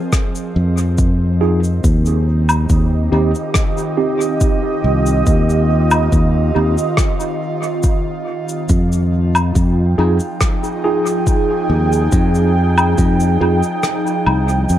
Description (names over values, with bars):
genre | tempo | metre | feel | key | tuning
ambient dub | 70 BPM | 4/4 | straight | F minor | A4 = 442 Hz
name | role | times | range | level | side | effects
airy breathy pad | sustained chords | 0.0-14.8 s | Eb3 to G5 | -20 LUFS | right 1 dB | chorus
cabasa, rim click and woodblock | drums | 0.1-14.8 s | none | -22 LUFS | left 1 dB | dub echo
electronic kick drum | drums | 0.1-13.2 s | none | -16 LUFS | equal | overdrive
fingered electric bass | bass | 0.6-14.8 s | C2 to F2 | -15 LUFS | equal | none
mellow tine electric piano | stabs | 1.4-13.6 s | C4 to Ab4 | -21 LUFS | right 3 dB | medium stereo tremolo, dub echo
room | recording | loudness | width
light reverb, small room ambience | none | -13 LUFS | side -12 dB against mid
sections
0.0-14.8 A section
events
kick drops out 13.8-14.8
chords
0.0 Fm7; 1.8 Eb6; 8.7 Fm7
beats
0.13 0.98 | 1.84 2.70 3.56 4.41 | 5.27 6.13 6.98 7.84 | 8.70 9.55 10.41 11.27 | 12.13 12.98 13.84 14.70